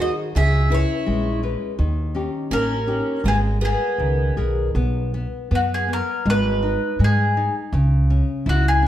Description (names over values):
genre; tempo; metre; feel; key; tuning
fado-style ballad; 82 BPM; 2/4; rubato; G# minor, B major from 4.8 s; A4 = 437 Hz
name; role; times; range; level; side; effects
bowl-back mandolin; melody; 0.0-8.9 s; F#4 to E5; -24 LUFS; left 1 dB; none
picked twelve-string acoustic guitar; second line; 0.0-4.3 s; B3 to G#4; -27 LUFS; right 3 dB; none
nylon-string guitar; accompaniment; 0.0-8.9 s; C#3 to B#4; -25 LUFS; left 3 dB; none
upright bass; bass; 0.0-8.9 s; G#1 to G#2; -20 LUFS; right 1 dB; none
room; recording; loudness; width
moderate recital hall reverb, RT60 1.4 s; none; -18 LUFS; side -12 dB against mid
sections
0.0-4.8 A section; 4.8-8.9 B section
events
none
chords
0.3 C#m7; 1.8 D#7; 3.2 G#madd9; 4.8 B5; 6.3 G#m; 7.7 C#m